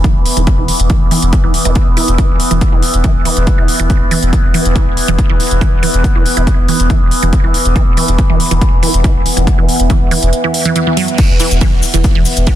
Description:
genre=driving peak-time techno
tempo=140 BPM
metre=4/4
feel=straight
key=unclear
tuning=A4 = 441 Hz
part: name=resonant blip pluck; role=riff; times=0.0-12.6 s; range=E3 to F#3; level=-18 LUFS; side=right 4 dB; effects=phaser, sidechain pumping, tape echo
part: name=warm sub bass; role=bass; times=0.0-12.5 s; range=E1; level=-14 LUFS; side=equal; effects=tube saturation, sidechain pumping, low-pass filter
part: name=overtone-sweeping drone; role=drone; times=0.0-12.6 s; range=E3 to B3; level=-18 LUFS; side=equal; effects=chorus, built-in reverb, sidechain pumping
part: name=electronic kick drum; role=drums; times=0.0-12.6 s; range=none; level=-12 LUFS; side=equal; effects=overdrive, studio reverb
part: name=techno drum kit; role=drums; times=0.0-12.6 s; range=crash cymbal, hi-hat, ride cymbal, shaker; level=-19 LUFS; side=equal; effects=overdrive, studio reverb
room=digital ambience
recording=dense, heavily limited modern master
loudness=-9 LUFS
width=side -12 dB against mid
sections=0.0-11.2 A section; 11.2-12.6 B section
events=filter sweep on synth arpeggio sound 0.0-11.2; drop 11.2-12.6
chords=0.0 E5

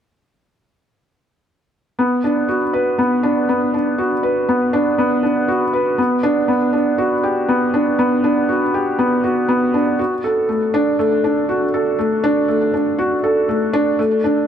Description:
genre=electronica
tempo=120 BPM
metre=4/4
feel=straight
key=B minor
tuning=A4 = 440 Hz
part: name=felt-muted upright piano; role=riff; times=2.0-14.5 s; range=A3 to B4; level=-15 LUFS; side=equal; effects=digital delay
room=moderate huge ambient reverb, RT60 4.9 s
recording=none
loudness=-15 LUFS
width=side -8 dB against mid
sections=2.0-14.5 A section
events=none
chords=none

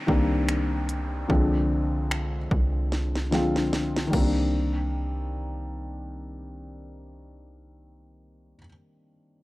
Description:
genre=contemporary R&B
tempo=74 BPM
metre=4/4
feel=swing 58% on 16ths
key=C minor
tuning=A4 = 441 Hz
part: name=felt-muted upright piano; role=accompaniment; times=0.0-9.4 s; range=D3 to F4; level=-27 LUFS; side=left 1 dB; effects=none
part: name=downlifter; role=sound effects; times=0.0-4.5 s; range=none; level=-43 LUFS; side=right 1 dB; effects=none
part: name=clean 808-style bass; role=bass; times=0.1-8.5 s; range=C2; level=-29 LUFS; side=equal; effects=none
part: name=trap drum kit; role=drums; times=0.1-4.4 s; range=crash cymbal, finger snaps, hi-hat, kick drum, snare drum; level=-27 LUFS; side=equal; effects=none
room=little or no reverb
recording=dry, gritty hardware recording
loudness=-23 LUFS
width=side -19 dB against mid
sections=0.0-4.5 A section; 4.5-7.8 B section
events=drum fill 2.9-4.5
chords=0.0 Cm9; 1.3 Dm7b5/C; 4.1 Cm9

